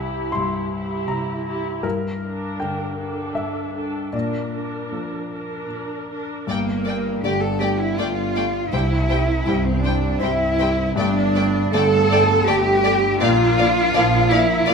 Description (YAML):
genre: cinematic, emotional film score for orchestra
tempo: 80 BPM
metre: 3/4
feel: rubato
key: G dorian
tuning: A4 = 439 Hz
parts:
  - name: clear grand piano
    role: accompaniment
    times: 0.0-14.7 s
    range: C2 to C6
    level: -25 LUFS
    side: left 3 dB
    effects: none
  - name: warm studio viola section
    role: accompaniment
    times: 0.0-14.7 s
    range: G3 to Bb4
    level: -29 LUFS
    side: right 2 dB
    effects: none
  - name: warm studio cello section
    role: bass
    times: 0.0-14.7 s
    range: G2 to A4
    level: -22 LUFS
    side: right 3 dB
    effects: none
  - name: rich studio violin section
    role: melody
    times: 6.5-14.7 s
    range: F5 to G5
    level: -30 LUFS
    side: left 4 dB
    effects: none
  - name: large flute ensemble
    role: second line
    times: 6.5-14.7 s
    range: Bb4 to A5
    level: -24 LUFS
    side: left 2 dB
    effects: none
  - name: rich studio violin section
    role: second line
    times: 6.5-14.7 s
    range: C5 to D5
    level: -29 LUFS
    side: left 3 dB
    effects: none
  - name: dark French horn section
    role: sustained chords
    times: 6.5-14.7 s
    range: G3 to D4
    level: -28 LUFS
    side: left 2 dB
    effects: none
  - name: warm studio double bass section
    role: bass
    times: 6.5-14.7 s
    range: G1 to C2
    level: -24 LUFS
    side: right 4 dB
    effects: none
room: moderate scoring stage reverb, RT60 1.8 s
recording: minimal, uncompressed stereo recording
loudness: -18 LUFS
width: side -5 dB against mid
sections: 0.0-6.5 A section; 6.5-14.7 A section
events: none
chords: 0.0 C; 1.8 Gmadd9; 4.1 Bb; 6.5 Gmadd9; 8.7 C; 11.0 Gsus2; 13.2 Bb